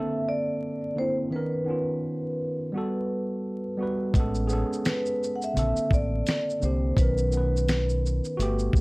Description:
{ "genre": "lo-fi hip hop", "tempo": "85 BPM", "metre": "4/4", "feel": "swing 58% on 16ths", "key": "unclear", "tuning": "A4 = 442 Hz", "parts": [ { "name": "vibraphone with soft mallets", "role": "melody", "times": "0.0-8.8 s", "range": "B4 to F#5", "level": "-30 LUFS", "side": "equal", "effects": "none" }, { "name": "tine electric piano", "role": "accompaniment", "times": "0.0-8.8 s", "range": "C#3 to B4", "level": "-29 LUFS", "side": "right 1 dB", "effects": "overdrive, cassette tape" }, { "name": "deep dub fingered electric bass", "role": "bass", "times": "4.1-8.8 s", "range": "G1 to C2", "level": "-26 LUFS", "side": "equal", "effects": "none" }, { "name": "dusty soul sampler-style drum kit", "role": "drums", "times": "4.1-8.8 s", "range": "hi-hat, kick drum, shaker, snare drum", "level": "-25 LUFS", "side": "equal", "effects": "none" } ], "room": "moderate studio reverb, RT60 0.6 s", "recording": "vinyl crackle", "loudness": "-24 LUFS", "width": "side -25 dB against mid", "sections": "0.0-8.8 A section", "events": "none", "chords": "0.0 Bbmaj9; 1.3 Bmaj9; 2.7 Gmaj9; 4.1 Amaj9; 5.6 Bbmaj9; 7.0 Bmaj9" }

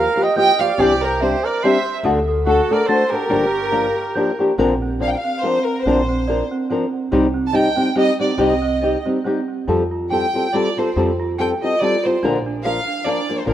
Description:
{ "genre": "mexican folk, mariachi", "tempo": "142 BPM", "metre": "3/4", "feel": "swing 55% on 8ths, rubato", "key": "G minor, Bb major from 4.6 s", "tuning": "A4 = 440 Hz", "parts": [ { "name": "rich chamber violin section", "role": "melody", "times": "0.0-13.5 s", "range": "A4 to A5", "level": "-21 LUFS", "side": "right 1 dB", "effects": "none" }, { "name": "mellow trumpet", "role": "second line", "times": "0.0-4.4 s", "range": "F#4 to Eb5", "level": "-23 LUFS", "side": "right 3 dB", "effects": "none" }, { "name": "flamenco guitar", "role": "accompaniment", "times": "0.0-13.5 s", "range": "G2 to Bb4", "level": "-20 LUFS", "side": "left 2 dB", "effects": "none" }, { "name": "large celesta", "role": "arpeggios", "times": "0.0-13.5 s", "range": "C4 to C7", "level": "-24 LUFS", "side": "right 3 dB", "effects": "none" }, { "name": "upright bass", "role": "bass", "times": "0.0-13.5 s", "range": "G1 to F2", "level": "-26 LUFS", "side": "equal", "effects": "none" } ], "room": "light reverb, studio reverb", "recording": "rough home demo mix", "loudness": "-16 LUFS", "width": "side -11 dB against mid", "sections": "0.0-4.6 A section; 4.6-13.5 B section", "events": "none", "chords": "0.0 Ebadd9; 0.8 Cadd9; 2.0 D; 3.3 Gm7; 4.6 Bbadd9; 7.1 Cm; 9.7 Fadd9; 12.2 Bb" }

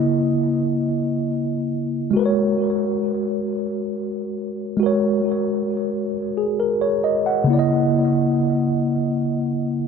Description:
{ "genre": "R&B", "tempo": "45 BPM (dotted quarters)", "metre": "6/8", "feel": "straight", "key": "C# dorian", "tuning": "A4 = 442 Hz", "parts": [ { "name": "mellow tine electric piano", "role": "solo", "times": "0.0-9.9 s", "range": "C#3 to F#5", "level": "-19 LUFS", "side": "equal", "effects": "medium stereo tremolo, analog delay" } ], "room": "moderate plate reverb, RT60 2.8 s", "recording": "echo-heavy mix", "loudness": "-19 LUFS", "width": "side -6 dB against mid", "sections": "0.0-7.5 A section; 7.5-9.9 B section", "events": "none", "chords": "0.0 C#m69; 2.1 G#9sus4; 7.5 C#m69" }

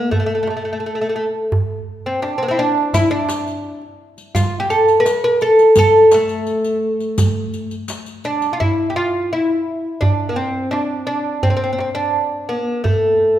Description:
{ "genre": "Arabic maqam ensemble", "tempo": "85 BPM", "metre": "4/4", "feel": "straight", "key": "A maqam bayati", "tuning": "A4 = 440 Hz", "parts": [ { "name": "oud", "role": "melody", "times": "0.0-13.4 s", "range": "A3 to Bb4+50c", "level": "-16 LUFS", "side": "equal", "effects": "none" }, { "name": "darbuka", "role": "percussion", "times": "0.1-13.0 s", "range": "none", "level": "-21 LUFS", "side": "right 2 dB", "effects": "none" }, { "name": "riq", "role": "percussion", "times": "2.9-8.5 s", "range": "none", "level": "-29 LUFS", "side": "left 3 dB", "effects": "none" } ], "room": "light reverb", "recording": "minimal, uncompressed stereo recording", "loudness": "-15 LUFS", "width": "side -12 dB against mid", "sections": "0.0-8.6 A section; 8.6-13.4 B section", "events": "none", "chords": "none" }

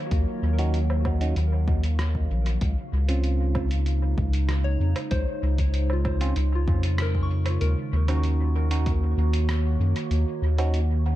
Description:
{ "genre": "ambient dub", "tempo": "96 BPM", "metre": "4/4", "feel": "straight", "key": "Eb dorian", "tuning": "A4 = 440 Hz", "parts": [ { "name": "warbly tape-like pad", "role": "sustained chords", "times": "0.0-11.2 s", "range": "Db3 to F5", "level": "-31 LUFS", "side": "right 2 dB", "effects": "chorus, built-in reverb" }, { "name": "soft synth bell", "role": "arpeggios", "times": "0.0-11.2 s", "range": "F4 to Db6", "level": "-37 LUFS", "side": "left 4 dB", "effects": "chorus, phaser, vintage 12-bit sampler grit, dub echo" }, { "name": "round analog bass", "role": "bass", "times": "0.1-11.2 s", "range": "Bb1 to Gb2", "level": "-22 LUFS", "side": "equal", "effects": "none" }, { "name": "electronic kick drum", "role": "drums", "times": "0.1-9.0 s", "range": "none", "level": "-28 LUFS", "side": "equal", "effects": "overdrive" }, { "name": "lo-fi sampler-style drum kit", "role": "drums", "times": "0.1-10.9 s", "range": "hi-hat, rim click, woodblock", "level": "-36 LUFS", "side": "right 1 dB", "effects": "dub echo" }, { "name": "bell-like tine electric piano", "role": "stabs", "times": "0.6-10.8 s", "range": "C4 to Gb4", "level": "-34 LUFS", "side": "right 4 dB", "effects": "phaser, dub echo" } ], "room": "digital ambience", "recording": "echo-heavy mix", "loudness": "-22 LUFS", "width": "side -14 dB against mid", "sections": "0.0-7.6 A section; 7.6-11.2 B section", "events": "band accent 7.0-7.3", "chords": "0.0 Ebm7; 2.6 Dbmaj7; 7.6 Ebm7" }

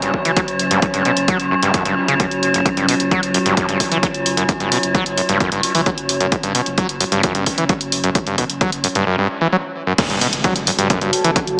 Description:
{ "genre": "driving peak-time techno", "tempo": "131 BPM", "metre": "4/4", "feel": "straight", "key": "F# phrygian", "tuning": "A4 = 440 Hz", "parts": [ { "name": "screaming distorted acid line", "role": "riff", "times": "0.0-11.4 s", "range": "F#1 to F#3", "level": "-19 LUFS", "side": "equal", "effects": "distortion, chorus, sidechain pumping, digital delay" }, { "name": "saturated sub bass", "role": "bass", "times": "0.0-11.6 s", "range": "F#1", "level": "-33 LUFS", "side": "equal", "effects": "sidechain pumping, low-pass filter" }, { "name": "metallic inharmonic drone", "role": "drone", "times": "0.0-11.6 s", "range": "F#3 to C#4", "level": "-21 LUFS", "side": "equal", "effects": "chorus, built-in reverb, phaser, sidechain pumping" }, { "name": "punchy analog drum machine", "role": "drums", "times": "0.0-11.6 s", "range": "crash cymbal, hi-hat", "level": "-20 LUFS", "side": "equal", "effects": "sidechain pumping on hats, sidechain pumping on cymbals" }, { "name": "electronic kick drum", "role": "drums", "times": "0.1-11.5 s", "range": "none", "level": "-20 LUFS", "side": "equal", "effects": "none" }, { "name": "impact", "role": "sound effects", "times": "10.0-11.6 s", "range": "none", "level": "-25 LUFS", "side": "equal", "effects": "none" }, { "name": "deep dark ambient pad", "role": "texture", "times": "10.6-11.6 s", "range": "F#4 to A5", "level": "-23 LUFS", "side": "equal", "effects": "chorus, built-in reverb, sidechain pumping" } ], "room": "moderate lush hall reverb, RT60 1.6 s, digital ambience", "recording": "small speaker sound", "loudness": "-15 LUFS", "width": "side -29 dB against mid", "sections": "0.0-10.0 A section; 10.0-11.6 B section", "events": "drop 10.0-11.6; impact 10.0-11.6", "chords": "0.0 F#5" }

